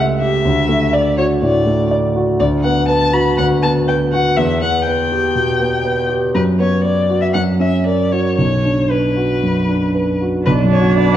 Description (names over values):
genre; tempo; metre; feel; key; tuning
quick classical-period movement for piano quartet; 114-125 BPM; 4/4; rubato; B minor; A4 = 436 Hz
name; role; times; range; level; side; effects
rich violin; melody; 0.0-11.2 s; B4 to B5; -19 LUFS; left 4 dB; none
warm concert grand piano; accompaniment; 0.0-11.2 s; B1 to E5; -14 LUFS; right 1 dB; none
rich cello; second line; 10.5-11.2 s; D4; -20 LUFS; right 7 dB; none
rich viola; accompaniment; 10.5-11.2 s; B3 to D4; -22 LUFS; right 5 dB; none
room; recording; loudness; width
wet scoring stage reverb, RT60 1.6 s; worn, warbling old tape, cassette tape, warbly pitch drift; -13 LUFS; side -11 dB against mid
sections
0.0-10.5 A section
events
none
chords
0.5 D; 2.4 Bm/D; 4.4 Em; 6.4 B5/F#; 7.4 F#; 8.4 Bm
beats
| 0.45 0.94 1.42 1.91 | 2.40 2.89 3.38 3.88 | 4.37 4.87 5.36 5.86 | 6.36 6.85 7.35 7.87 | 8.38 8.91 9.43 9.95 | 10.46 10.97